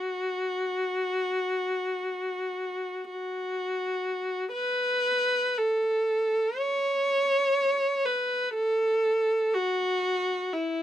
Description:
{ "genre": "classical, free, expressive piece for unaccompanied viola", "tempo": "free time", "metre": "none", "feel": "none", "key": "A major from 4.5 s", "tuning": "A4 = 441 Hz", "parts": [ { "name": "rich viola", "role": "solo", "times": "0.0-10.8 s", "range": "E4 to C#5", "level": "-25 LUFS", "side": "equal", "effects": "none" } ], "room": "light reverb", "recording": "close, detailed microphones", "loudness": "-25 LUFS", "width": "side -11 dB against mid", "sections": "0.0-4.5 A section; 4.5-10.8 B section", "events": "none", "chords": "none" }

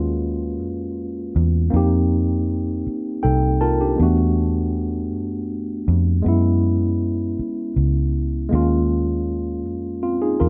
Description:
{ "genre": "slow six-eight R&B", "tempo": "53 BPM (dotted quarters)", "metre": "6/8", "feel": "straight", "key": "unclear", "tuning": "A4 = 440 Hz", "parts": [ { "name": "tine electric piano", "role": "accompaniment", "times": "0.0-10.5 s", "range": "Ab3 to A5", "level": "-24 LUFS", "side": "equal", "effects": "none" }, { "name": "vintage muted fingered electric bass", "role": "bass", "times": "0.0-10.5 s", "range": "C2 to F#2", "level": "-23 LUFS", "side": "equal", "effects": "none" } ], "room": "light reverb", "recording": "none", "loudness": "-21 LUFS", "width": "mono", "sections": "0.0-10.5 A section", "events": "tine electric piano fill 2.9-4.0", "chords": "0.0 Eb9sus4; 1.7 F9sus4; 4.0 E9sus4; 6.2 Gb9sus4; 8.5 Eb9sus4" }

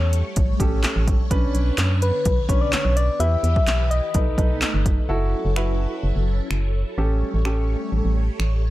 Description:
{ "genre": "dance-pop", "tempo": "127 BPM", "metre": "4/4", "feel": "straight", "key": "unclear", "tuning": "A4 = 439 Hz", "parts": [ { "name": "soft struck synth lead", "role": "melody", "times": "0.0-4.6 s", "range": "B4 to E5", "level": "-26 LUFS", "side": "left 3 dB", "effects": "chorus, tape echo" }, { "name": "warm baby grand piano", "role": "accompaniment", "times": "0.0-8.2 s", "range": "C#4 to B4", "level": "-29 LUFS", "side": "right 1 dB", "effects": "sidechain pumping" }, { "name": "phased string machine", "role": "sustained chords", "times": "0.0-8.7 s", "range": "D3 to C#5", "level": "-31 LUFS", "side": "equal", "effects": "ensemble chorus, phaser, sidechain pumping" }, { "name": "organ-like FM bass", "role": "bass", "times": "0.0-8.7 s", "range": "F#1 to F#2", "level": "-21 LUFS", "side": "equal", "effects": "sidechain pumping" }, { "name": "deep house drum kit", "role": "drums", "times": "0.1-8.5 s", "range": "finger snaps, handclaps, hi-hat, kick drum, snare drum", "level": "-22 LUFS", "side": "equal", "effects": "none" } ], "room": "digital ambience", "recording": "dark, warm production", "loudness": "-19 LUFS", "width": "side -16 dB against mid", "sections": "0.0-5.1 A section; 5.1-8.7 B section", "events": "none", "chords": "0.0 A7; 1.3 Bmadd9; 3.2 Em; 4.1 B7; 5.1 F#m7; 7.0 A7" }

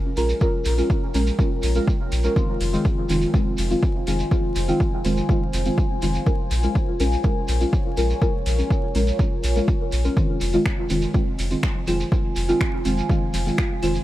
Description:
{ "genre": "dub techno", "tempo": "123 BPM", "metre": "4/4", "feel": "straight", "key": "F minor", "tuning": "A4 = 440 Hz", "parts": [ { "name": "deep dark ambient pad", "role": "sustained chords", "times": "0.0-14.0 s", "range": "F4 to Ab5", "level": "-30 LUFS", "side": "left 2 dB", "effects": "chorus, built-in reverb, sidechain pumping" }, { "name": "deep mellow chord stab", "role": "stabs", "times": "0.2-14.0 s", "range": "Eb3 to Bb4", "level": "-24 LUFS", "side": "equal", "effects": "chorus, phaser, dub echo" }, { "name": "soft dub sub bass", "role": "bass", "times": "0.2-14.0 s", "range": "F1 to Bb1", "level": "-23 LUFS", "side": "equal", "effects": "sidechain pumping" }, { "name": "soft vintage rhythm box", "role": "drums", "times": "0.2-13.9 s", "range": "finger snaps, hi-hat", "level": "-35 LUFS", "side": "left 1 dB", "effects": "none" }, { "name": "shekere", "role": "percussion", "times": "0.2-14.0 s", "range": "none", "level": "-35 LUFS", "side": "right 3 dB", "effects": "none" }, { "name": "electronic kick drum", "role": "drums", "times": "0.4-13.7 s", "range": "none", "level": "-22 LUFS", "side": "equal", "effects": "overdrive" }, { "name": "congas and claves", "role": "percussion", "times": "11.8-13.9 s", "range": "none", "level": "-36 LUFS", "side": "left 2 dB", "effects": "sidechain pumping on perc" } ], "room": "digital ambience", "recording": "vinyl crackle", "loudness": "-19 LUFS", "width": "side -15 dB against mid", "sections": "0.0-14.0 A section", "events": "none", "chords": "0.0 Bbm7; 2.4 Fm7; 6.3 Bbm7; 10.2 Fm7" }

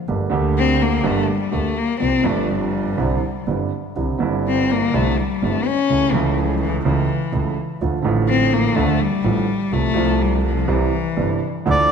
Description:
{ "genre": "tango", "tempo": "125 BPM", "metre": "4/4", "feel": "rubato", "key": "unclear", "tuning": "A4 = 440 Hz", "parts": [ { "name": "warm grand piano", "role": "accompaniment", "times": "0.1-11.9 s", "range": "G1 to G4", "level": "-21 LUFS", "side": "right 5 dB", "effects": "none" }, { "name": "warm double bass", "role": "bass", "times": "0.1-11.9 s", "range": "G1 to D2", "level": "-24 LUFS", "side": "right 1 dB", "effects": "none" }, { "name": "warm cello", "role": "second line", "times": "0.6-11.4 s", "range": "E3 to Db4", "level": "-21 LUFS", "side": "left 6 dB", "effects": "none" }, { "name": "bandoneon", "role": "melody", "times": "11.7-11.9 s", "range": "D5", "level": "-14 LUFS", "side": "equal", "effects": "none" } ], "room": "moderate concert hall reverb, RT60 2.4 s", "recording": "dark, warm production", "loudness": "-17 LUFS", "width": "side -6 dB against mid", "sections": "0.0-11.7 A section", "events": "cello solo 0.0-11.7", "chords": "0.1 Gmadd9; 2.0 Csus4; 3.0 Cadd9; 5.9 A/C#; 7.8 Dm; 9.7 F/C; 10.7 C" }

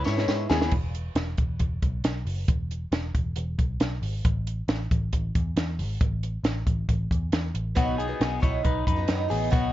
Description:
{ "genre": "jangly indie pop", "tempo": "136 BPM", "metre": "4/4", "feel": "straight", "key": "E major", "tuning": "A4 = 440 Hz", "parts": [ { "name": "picked twelve-string acoustic guitar", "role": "accompaniment", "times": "0.0-0.7, 7.8-9.7 s", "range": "B2 to E4", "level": "-31 LUFS", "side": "right 9 dB", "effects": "none" }, { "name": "electric guitar at the edge of break-up", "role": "arpeggios", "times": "0.0-0.7, 7.8-9.7 s", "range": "B3 to C#5", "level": "-29 LUFS", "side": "left 7 dB", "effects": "phaser" }, { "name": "vintage muted picked electric bass", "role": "bass", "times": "0.0-9.7 s", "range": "E1 to G#2", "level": "-29 LUFS", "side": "equal", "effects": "none" }, { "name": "tambourine", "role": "percussion", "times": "0.0-0.6 s", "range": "none", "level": "-44 LUFS", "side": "left 4 dB", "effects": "none" }, { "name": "compact cocktail drum kit", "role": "drums", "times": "0.1-9.6 s", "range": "crash cymbal, hi-hat, kick drum, snare drum", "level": "-26 LUFS", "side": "equal", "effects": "none" } ], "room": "little or no reverb", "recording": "nothing above 7.5 kHz", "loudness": "-24 LUFS", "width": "side -14 dB against mid", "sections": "0.7-9.7 A section", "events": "drum fill 0.0-0.7", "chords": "0.0 C#m7; 0.7 E5; 4.2 A5; 7.8 B" }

